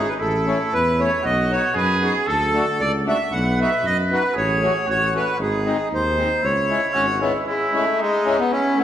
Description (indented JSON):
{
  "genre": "alpine folk, alpine dance band",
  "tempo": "116 BPM",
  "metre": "2/4",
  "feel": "straight",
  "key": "C# minor",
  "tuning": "A4 = 441 Hz",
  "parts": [
    { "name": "accordion", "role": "melody", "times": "0.0-8.8 s", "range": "G#3 to F#5", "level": "-21 LUFS", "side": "equal", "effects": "none" },
    { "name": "warm trumpet", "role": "second line", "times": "0.0-8.8 s", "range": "D#4 to B4", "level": "-25 LUFS", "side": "right 2 dB", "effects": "none" },
    { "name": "accordion", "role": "accompaniment", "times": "0.0-8.8 s", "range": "G#3 to F#4", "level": "-26 LUFS", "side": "left 3 dB", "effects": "none" },
    { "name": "mellow tuba", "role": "bass", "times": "0.0-7.3 s", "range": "G#1 to F#2", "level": "-24 LUFS", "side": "equal", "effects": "none" }
  ],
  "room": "wet recital hall reverb, RT60 1.6 s",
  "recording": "recorded in a church or concert hall",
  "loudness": "-18 LUFS",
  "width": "side -10 dB against mid",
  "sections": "0.0-7.5 A section; 7.5-8.8 A section",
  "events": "none",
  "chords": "0.2 A; 1.2 B; 2.3 D; 3.3 B; 4.4 F#m/A; 5.4 G#; 6.4 C#m",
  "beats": "| 0.20 0.72 | 1.24 1.76 | 2.27 2.79 | 3.32 3.84 | 4.35 4.87 | 5.39 5.91 | 6.43 6.95 | 7.47 7.99 | 8.51"
}